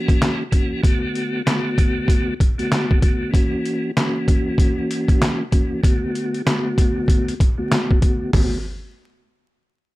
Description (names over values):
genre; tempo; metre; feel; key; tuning
hip hop, boom-bap hip-hop; 96 BPM; 4/4; swing 61% on 16ths; B minor; A4 = 441 Hz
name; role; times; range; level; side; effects
tonewheel organ; accompaniment; 0.0-8.6 s; D3 to F#4; -22 LUFS; equal; fast rotary speaker, cassette tape, high-pass filter, low-pass filter, plate reverb
trip hop sampler-style drum kit; drums; 0.1-8.5 s; handclaps, hi-hat, kick drum, snare drum, toms; -17 LUFS; equal; none
room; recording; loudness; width
light reverb; vinyl crackle; -17 LUFS; side -18 dB against mid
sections
0.0-8.3 A section; 8.3-10.0 B section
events
filter sweep on tonewheel organ 0.0-8.3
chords
0.0 F#7; 0.8 Bm7; 3.3 F#7; 5.8 Bm7